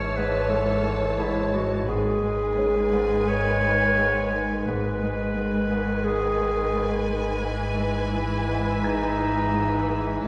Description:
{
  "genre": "cinematic, suspense film score",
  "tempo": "87 BPM",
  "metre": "4/4",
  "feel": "straight",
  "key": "G# minor",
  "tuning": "A4 = 439 Hz",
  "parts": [
    { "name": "warm symphonic violin section", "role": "melody", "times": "0.0-10.3 s", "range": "G#5 to A5", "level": "-38 LUFS", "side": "equal", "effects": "none" },
    { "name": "clear clarinet", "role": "second line", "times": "0.0-10.3 s", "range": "C#4 to C#5", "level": "-28 LUFS", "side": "equal", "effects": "none" },
    { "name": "warm studio viola section", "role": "accompaniment", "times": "0.0-10.3 s", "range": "D#3 to C#5", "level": "-32 LUFS", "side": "equal", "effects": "none" },
    { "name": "Celtic harp", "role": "riff", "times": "0.0-10.3 s", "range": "G#2 to G#3", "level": "-33 LUFS", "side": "equal", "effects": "none" },
    { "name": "rich symphonic cello section", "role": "bass", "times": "0.0-10.3 s", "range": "G#2", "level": "-32 LUFS", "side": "equal", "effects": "none" },
    { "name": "sub bass with octave", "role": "drone", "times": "0.0-10.3 s", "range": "G#1", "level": "-36 LUFS", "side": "equal", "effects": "none" },
    { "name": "dark baby grand piano", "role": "texture", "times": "0.0-10.3 s", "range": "C#4 to G#6", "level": "-42 LUFS", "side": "equal", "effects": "none" },
    { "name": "dark symphonic violin section", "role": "texture", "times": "0.0-1.5, 7.4-10.3 s", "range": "E6 to B6", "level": "-44 LUFS", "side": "equal", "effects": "none" },
    { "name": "rich symphonic double bass section", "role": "bass", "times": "1.9-5.3, 10.2-10.3 s", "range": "G#1", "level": "-38 LUFS", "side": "equal", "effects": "none" }
  ],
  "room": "wet scoring stage reverb, RT60 2.0 s",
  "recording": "heard from further back in the room",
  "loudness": "-24 LUFS",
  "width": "mono",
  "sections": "0.0-10.3 A section",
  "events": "none",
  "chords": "0.0 A/G#; 1.9 G#m; 7.4 E/G#",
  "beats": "0.51 1.20 | 1.89 2.58 3.29 3.98 | 4.67 5.36 6.05 6.75 | 7.45 8.14 8.84 9.54 | 10.24"
}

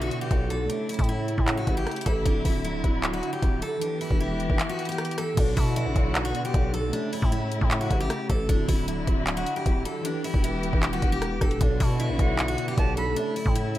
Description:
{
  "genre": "hip hop, trap",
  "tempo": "154 BPM",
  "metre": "4/4",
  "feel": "half-time",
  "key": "B minor",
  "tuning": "A4 = 436 Hz",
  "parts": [
    { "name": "picked steel-string acoustic guitar", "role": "melody", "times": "0.0-13.8 s", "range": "D4 to A4", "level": "-31 LUFS", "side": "equal", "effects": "analog delay" },
    { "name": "mellow tine electric piano", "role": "accompaniment", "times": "0.0-13.8 s", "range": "B2 to E5", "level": "-33 LUFS", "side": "equal", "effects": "medium stereo tremolo" },
    { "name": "warm symphonic string section", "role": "sustained chords", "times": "0.0-13.8 s", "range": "C#3 to G4", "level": "-33 LUFS", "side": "left 1 dB", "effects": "none" },
    { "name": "growling 808-style bass", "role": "bass", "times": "0.0-13.8 s", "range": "D1 to B2", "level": "-29 LUFS", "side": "equal", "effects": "none" },
    { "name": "trap drum kit", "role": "drums", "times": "0.1-13.8 s", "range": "crash cymbal, handclaps, hi-hat, kick drum, rim click", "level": "-25 LUFS", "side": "equal", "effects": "none" },
    { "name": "bright reedy jazz flute", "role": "second line", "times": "12.2-13.8 s", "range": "E5 to B5", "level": "-33 LUFS", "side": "right 4 dB", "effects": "analog delay" }
  ],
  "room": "light reverb, small room ambience",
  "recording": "none",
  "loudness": "-23 LUFS",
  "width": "side -14 dB against mid",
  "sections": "0.0-5.4 A section; 5.4-13.8 B section",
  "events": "kick muted 4.6-5.4",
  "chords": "0.0 Bm; 0.7 A; 2.3 Dadd9; 3.8 Em; 5.4 Bm; 6.9 A; 8.5 Dadd9; 10.0 Em; 11.6 Bm; 13.2 A",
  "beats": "0.31 | 0.70 1.09 1.48 1.87 | 2.26 2.65 3.04 3.42 | 3.81 4.20 4.59 4.98 | 5.37 5.76 6.15 6.54 | 6.93 7.32 7.71 8.10 | 8.49 8.88 9.27 9.66 | 10.05 10.44 10.83 11.22 | 11.61 12.00 12.39 12.78 | 13.16 13.55"
}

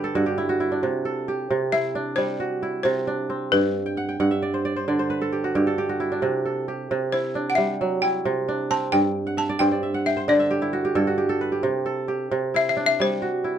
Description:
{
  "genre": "west african traditional, West African string and xylophone music",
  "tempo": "89 BPM (dotted quarters)",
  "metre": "12/8",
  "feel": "straight",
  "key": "unclear",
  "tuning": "A4 = 441 Hz",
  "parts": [
    { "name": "kora", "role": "arpeggios", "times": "0.0-13.6 s", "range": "G2 to G5", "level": "-23 LUFS", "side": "right 2 dB", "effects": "none" },
    { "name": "balafon", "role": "melody", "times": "1.7-13.6 s", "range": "B4 to A5", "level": "-23 LUFS", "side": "left 3 dB", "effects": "none" }
  ],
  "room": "moderate small room reverb, RT60 0.6 s",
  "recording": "dark, warm production",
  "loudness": "-21 LUFS",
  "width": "side -9 dB against mid",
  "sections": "0.0-13.6 A section",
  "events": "kora fill 0.0-0.8, 3.9-6.2, 9.3-11.6",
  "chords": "0.0 G5; 0.8 C; 3.5 G; 6.2 C; 8.9 G5; 11.6 C",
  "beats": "0.15 | 0.83 1.50 2.18 2.85 | 3.53 4.20 4.88 5.55 | 6.23 6.90 7.58 8.25 | 8.93 9.61 10.28 10.96 | 11.63 12.31 12.99"
}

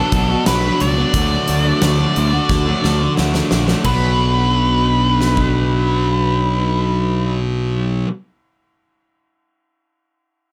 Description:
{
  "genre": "quiet-loud alternative rock",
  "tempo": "88 BPM",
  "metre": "4/4",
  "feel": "straight",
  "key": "B minor",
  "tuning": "A4 = 441 Hz",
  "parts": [
    { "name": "octave-fuzz lead guitar", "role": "melody", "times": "0.0-7.3 s", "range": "A4 to D5", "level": "-22 LUFS", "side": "equal", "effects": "distortion, slapback echo" },
    { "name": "twelve-string electric guitar", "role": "arpeggios", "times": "0.0-8.1 s", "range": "B2 to F#4", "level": "-26 LUFS", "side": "equal", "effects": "lush chorus, slapback echo" },
    { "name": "thick fuzz guitar", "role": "riff", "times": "0.0-8.1 s", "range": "B2 to D4", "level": "-22 LUFS", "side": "equal", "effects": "distortion" },
    { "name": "growling fingered electric bass", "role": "bass", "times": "0.1-8.0 s", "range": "A#1 to D2", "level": "-22 LUFS", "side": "equal", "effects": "overdrive" },
    { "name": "big rock drum kit", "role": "drums", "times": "0.1-5.5 s", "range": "hi-hat, kick drum, ride cymbal, snare drum", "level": "-24 LUFS", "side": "equal", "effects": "none" }
  ],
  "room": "light reverb",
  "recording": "none",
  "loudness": "-17 LUFS",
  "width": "mono",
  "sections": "0.0-3.9 A section; 3.9-6.6 B section",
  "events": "drum fill 2.5-3.9",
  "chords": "0.0 Bm; 1.1 D; 3.9 Bm",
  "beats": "0.47 | 1.14 1.82 2.49 3.17 | 3.85 4.53 5.21 5.88"
}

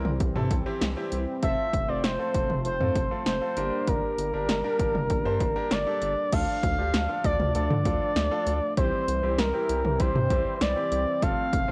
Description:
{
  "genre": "synth-pop",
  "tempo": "98 BPM",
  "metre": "4/4",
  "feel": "straight",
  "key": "unclear",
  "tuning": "A4 = 441 Hz",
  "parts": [
    { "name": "bright grand piano", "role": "accompaniment", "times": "0.0-11.7 s", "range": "C4 to C5", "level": "-37 LUFS", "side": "equal", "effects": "cassette tape" },
    { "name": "chorused pulse-width pad", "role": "sustained chords", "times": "0.0-11.7 s", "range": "E3 to D4", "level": "-37 LUFS", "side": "equal", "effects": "cassette tape" },
    { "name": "rubbery square bass", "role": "bass", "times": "0.0-11.7 s", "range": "F1 to D3", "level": "-33 LUFS", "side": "equal", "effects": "none" },
    { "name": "punchy analog drum machine", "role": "drums", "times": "0.1-11.7 s", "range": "crash cymbal, hi-hat, kick drum, snare drum, toms", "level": "-31 LUFS", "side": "equal", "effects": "cassette tape" },
    { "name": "expressive portamento lead", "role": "melody", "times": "1.4-11.7 s", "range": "Bb4 to F5", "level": "-30 LUFS", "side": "equal", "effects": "chorus, cassette tape" }
  ],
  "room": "light reverb",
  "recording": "home recording on cassette",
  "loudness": "-26 LUFS",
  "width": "mono",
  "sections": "0.0-6.3 A section; 6.3-11.7 B section",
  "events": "none",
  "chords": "0.0 C; 1.4 F; 3.6 Gm; 6.3 Dm; 8.8 C",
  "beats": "0.20 0.82 | 1.43 2.04 2.65 3.26 | 3.88 4.49 5.10 5.71 | 6.33 6.94 7.55 8.16 | 8.78 9.39 10.00 10.61 | 11.22"
}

